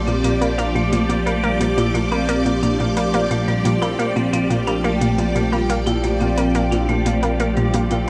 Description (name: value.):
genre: ambient, sequencer-driven space music.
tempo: 88 BPM.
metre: 4/4.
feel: straight.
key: unclear.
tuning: A4 = 440 Hz.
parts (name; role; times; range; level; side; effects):
phased string machine; sustained chords; 0.0-8.1 s; F3 to D5; -24 LUFS; equal; ensemble chorus, phaser.
analog pluck; riff; 0.0-8.0 s; Bb2 to Bb3; -24 LUFS; equal; chorus, analog delay.
warm sub bass; bass; 0.0-8.1 s; Bb1; -28 LUFS; equal; none.
vibraphone with hard mallets; arpeggios; 0.1-8.0 s; G3 to E4; -26 LUFS; equal; analog delay.
electronic hi-hat and woodblock; percussion; 0.1-8.0 s; none; -35 LUFS; equal; analog delay.
room: wet huge ambient reverb, RT60 8.5 s.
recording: none.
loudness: -19 LUFS.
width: mono.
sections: 0.0-8.1 A section.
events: none.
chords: 0.0 Bb6.